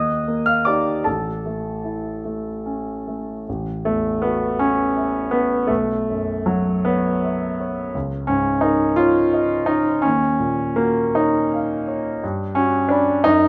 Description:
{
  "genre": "classical, impressionist solo piano",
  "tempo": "47-59 BPM (dotted quarters)",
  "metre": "6/8",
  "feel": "rubato",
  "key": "A lydian",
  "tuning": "A4 = 436 Hz",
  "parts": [
    { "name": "warm grand piano", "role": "solo", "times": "0.0-13.5 s", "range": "A1 to F6", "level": "-20 LUFS", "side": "equal", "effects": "none" }
  ],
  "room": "moderate recital hall reverb, RT60 1.6 s",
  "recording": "close, detailed microphones",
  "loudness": "-21 LUFS",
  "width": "mono",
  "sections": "0.0-3.5 A section; 3.5-13.5 B section",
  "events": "none",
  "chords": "0.0 D#maj7; 1.1 A; 3.5 A69; 5.7 B9sus4; 7.9 C#69; 10.0 D#m9; 12.2 Gmaj7"
}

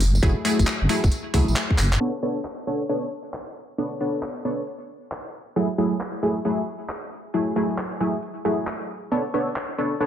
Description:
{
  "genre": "UK garage, two-step garage",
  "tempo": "135 BPM",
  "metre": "4/4",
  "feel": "swing 65% on 16ths",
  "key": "B minor",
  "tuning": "A4 = 439 Hz",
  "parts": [
    { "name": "deep soft wobble bass", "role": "bass", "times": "0.0-2.0 s", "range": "F#1 to C#2", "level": "-20 LUFS", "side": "equal", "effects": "chorus" },
    { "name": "garage drum kit", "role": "drums", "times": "0.0-10.1 s", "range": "crash cymbal, finger snaps, handclaps, hi-hat, tambourine", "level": "-30 LUFS", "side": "equal", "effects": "low-pass filter on hats, low-pass filter on perc, low-pass filter on snare, low-pass filter on cymbals, low-pass filter on room" },
    { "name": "punchy chord stab", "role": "stabs", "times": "0.2-10.1 s", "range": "F#3 to C#5", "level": "-24 LUFS", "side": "equal", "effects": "chorus, digital delay" },
    { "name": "electronic kick drum", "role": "drums", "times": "0.2-1.8 s", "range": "none", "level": "-21 LUFS", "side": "equal", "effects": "none" }
  ],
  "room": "light reverb",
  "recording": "low-pass filter",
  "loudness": "-22 LUFS",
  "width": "side -10 dB against mid",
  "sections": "0.0-2.0 A section; 2.0-10.1 B section",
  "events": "drum fill 1.8; band accent 1.9",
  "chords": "0.0 F#m9; 2.0 Bm9; 5.3 F#m9; 9.1 Bm9"
}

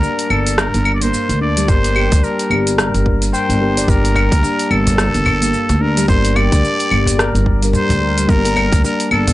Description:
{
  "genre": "organic downtempo",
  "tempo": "109 BPM",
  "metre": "4/4",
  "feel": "swing 59% on 16ths",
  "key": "G minor",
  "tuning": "A4 = 440 Hz",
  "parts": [
    { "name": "trumpet with straight mute", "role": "melody", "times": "0.0-9.3 s", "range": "A4 to D5", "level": "-21 LUFS", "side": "equal", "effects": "analog delay" },
    { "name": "muted felt-like synth keys", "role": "accompaniment", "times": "0.0-9.3 s", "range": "G3 to Bb4", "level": "-24 LUFS", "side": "left 2 dB", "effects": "chorus, sidechain pumping" },
    { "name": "handpan", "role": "arpeggios", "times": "0.0-9.3 s", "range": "G3 to G5", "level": "-20 LUFS", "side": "left 1 dB", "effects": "analog delay" },
    { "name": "deep house drum kit", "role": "drums", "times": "0.0-9.3 s", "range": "claves, hi-hat, rim click, shaker", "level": "-20 LUFS", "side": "equal", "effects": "none" },
    { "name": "upright bass", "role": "bass", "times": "0.3-9.3 s", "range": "G1 to D2", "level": "-17 LUFS", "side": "equal", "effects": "none" },
    { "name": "electronic kick drum", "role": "drums", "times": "1.7-8.8 s", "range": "none", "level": "-15 LUFS", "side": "equal", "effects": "none" },
    { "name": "cajon", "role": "percussion", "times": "4.2-9.3 s", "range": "none", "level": "-21 LUFS", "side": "equal", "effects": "none" }
  ],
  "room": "small room ambience",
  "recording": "dry, gritty hardware recording, nothing above 10.7 kHz",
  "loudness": "-12 LUFS",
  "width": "side -16 dB against mid",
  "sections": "0.0-9.3 A section",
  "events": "none",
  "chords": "0.0 Gm"
}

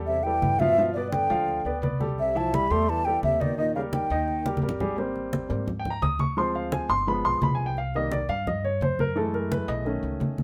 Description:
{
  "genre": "Afro-Cuban jazz",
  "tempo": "172 BPM",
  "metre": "4/4",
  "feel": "straight",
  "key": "unclear",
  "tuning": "A4 = 439 Hz",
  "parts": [
    { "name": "warm baby grand piano", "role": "accompaniment", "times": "0.0-10.4 s", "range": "Eb3 to Eb6", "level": "-30 LUFS", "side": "equal", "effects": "none" },
    { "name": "upright bass", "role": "bass", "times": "0.0-10.4 s", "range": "G1 to Ab2", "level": "-34 LUFS", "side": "equal", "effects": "none" },
    { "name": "breathy mellow concert flute", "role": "melody", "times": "0.1-4.6 s", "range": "D5 to C6", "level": "-27 LUFS", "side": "equal", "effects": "none" },
    { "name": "warm trombone", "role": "second line", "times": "0.1-4.6 s", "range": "Bb2 to A3", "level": "-35 LUFS", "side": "equal", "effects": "none" },
    { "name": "congas", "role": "percussion", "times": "0.1-10.4 s", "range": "none", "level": "-32 LUFS", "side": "equal", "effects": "none" }
  ],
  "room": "light reverb",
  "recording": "none",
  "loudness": "-26 LUFS",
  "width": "mono",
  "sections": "0.0-5.0 A section; 5.0-10.4 B section",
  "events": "drum fill 4.5-5.0; grand piano solo 5.0-10.4",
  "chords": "0.0 A5; 0.8 G9; 2.2 C6; 3.6 Eb; 5.0 Abmaj7; 6.4 Dm7b5; 7.1 G7b9; 7.8 Cm7; 9.2 Gbm7; 9.9 B7"
}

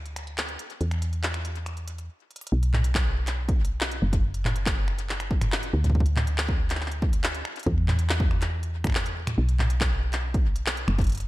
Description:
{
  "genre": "IDM",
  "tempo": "140 BPM",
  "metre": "4/4",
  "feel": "straight",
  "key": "B minor",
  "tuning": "A4 = 440 Hz",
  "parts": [
    { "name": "woody FM bass", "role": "bass", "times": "0.0-11.3 s", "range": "F#1 to E2", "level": "-26 LUFS", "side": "equal", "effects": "none" },
    { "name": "industrial drum kit", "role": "drums", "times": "0.1-11.3 s", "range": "finger snaps, handclaps, hi-hat, toms", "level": "-30 LUFS", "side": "equal", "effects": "ping-pong delay" },
    { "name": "electronic kick drum", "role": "drums", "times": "3.0-11.1 s", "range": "none", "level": "-25 LUFS", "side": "equal", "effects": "none" }
  ],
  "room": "little or no reverb",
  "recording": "none",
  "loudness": "-23 LUFS",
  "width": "side -18 dB against mid",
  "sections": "0.0-2.5 A section; 2.5-11.3 B section",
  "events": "filter sweep on drum 0.0-2.5; drum fill 2.3",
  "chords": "none"
}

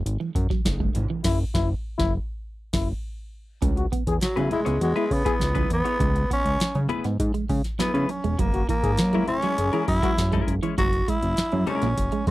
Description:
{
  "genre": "funk",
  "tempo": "101 BPM",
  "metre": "4/4",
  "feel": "straight",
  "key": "C# dorian",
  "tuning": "A4 = 442 Hz",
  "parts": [
    { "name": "fat analog bass", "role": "bass", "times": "0.0-12.3 s", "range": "E1 to C#3", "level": "-24 LUFS", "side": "equal", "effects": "none" },
    { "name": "booming analog drum machine", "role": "drums", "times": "0.1-12.3 s", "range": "crash cymbal, hi-hat, kick drum, snare drum", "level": "-27 LUFS", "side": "equal", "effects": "none" },
    { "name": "electric guitar at the edge of break-up", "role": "riff", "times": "0.2-12.3 s", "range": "E3 to C#4", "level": "-30 LUFS", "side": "right 6 dB", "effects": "analog chorus" },
    { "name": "congas", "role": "percussion", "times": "0.2-12.3 s", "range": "none", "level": "-35 LUFS", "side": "right 3 dB", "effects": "none" },
    { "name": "breathy trombone", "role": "second line", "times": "1.2-10.1 s", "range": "E4 to G#4", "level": "-28 LUFS", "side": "left 5 dB", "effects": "none" },
    { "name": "growling tenor saxophone", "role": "melody", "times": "4.2-12.3 s", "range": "F#3 to F#4", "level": "-26 LUFS", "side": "equal", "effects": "none" },
    { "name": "semi-hollow electric guitar", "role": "accompaniment", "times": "4.4-11.9 s", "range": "G#3 to C#5", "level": "-29 LUFS", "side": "left 6 dB", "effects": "wide subtle chorus" }
  ],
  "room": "little or no reverb",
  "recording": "dry, close 1970s-style studio recording",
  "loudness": "-21 LUFS",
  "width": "side -17 dB against mid",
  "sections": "0.0-3.6 A section; 3.6-12.3 B section",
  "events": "break 0.0-3.6; band accent 1.2-3.6; tenor saxophone solo 3.6-12.3",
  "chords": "0.0 F#sus2; 3.6 C#m7; 8.4 F#9"
}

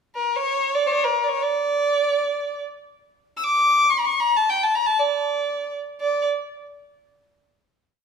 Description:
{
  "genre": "Persian modal ensemble",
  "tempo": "free time",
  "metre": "none",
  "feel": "none",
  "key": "D avaz esfahan",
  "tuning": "A4 = 435 Hz",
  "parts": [
    { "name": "clear violin", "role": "solo", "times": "0.1-6.2 s", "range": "B4-49c to E6", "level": "-19 LUFS", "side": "equal", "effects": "none" }
  ],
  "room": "moderate recital hall reverb, RT60 1.4 s",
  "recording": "minimal, uncompressed stereo recording",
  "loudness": "-19 LUFS",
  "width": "side -6 dB against mid",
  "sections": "0.0-6.0 free-time section; 6.0-7.6 final note",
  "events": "none",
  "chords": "none"
}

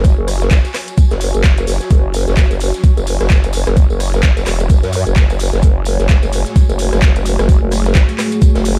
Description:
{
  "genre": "bass house",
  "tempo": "129 BPM",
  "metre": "4/4",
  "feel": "swing 59% on 16ths",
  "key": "F# minor",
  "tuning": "A4 = 440 Hz",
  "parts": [
    { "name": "vowel-sweep wobble bass", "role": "bass", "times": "0.0-8.8 s", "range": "E1 to F#2", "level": "-18 LUFS", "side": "equal", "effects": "chorus, overdrive, sidechain pumping" },
    { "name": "electronic kick drum", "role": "drums", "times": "0.0-8.5 s", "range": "none", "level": "-12 LUFS", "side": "equal", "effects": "overdrive, small room ambience" },
    { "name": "garage drum kit", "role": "drums", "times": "0.0-8.8 s", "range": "handclaps, hi-hat, rim click", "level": "-25 LUFS", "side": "equal", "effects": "overdrive, small room ambience" },
    { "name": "tambourine", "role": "percussion", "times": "0.0-8.8 s", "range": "none", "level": "-34 LUFS", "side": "equal", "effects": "none" },
    { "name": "granular cloud pad", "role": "texture", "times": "0.0-8.8 s", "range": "F#4 to G#5", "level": "-29 LUFS", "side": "equal", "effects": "built-in reverb, sidechain pumping" },
    { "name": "shaker and snare drum", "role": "drums", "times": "0.1-8.8 s", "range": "none", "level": "-35 LUFS", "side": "equal", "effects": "none" },
    { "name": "dark analog pad", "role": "sustained chords", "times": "5.6-8.8 s", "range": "A3 to G#4", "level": "-24 LUFS", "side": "equal", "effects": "chorus, sidechain pumping" }
  ],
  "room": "small room reverb",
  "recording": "dark, warm production",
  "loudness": "-13 LUFS",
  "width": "mono",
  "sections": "0.0-8.8 A section",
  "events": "none",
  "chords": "0.0 F#madd9"
}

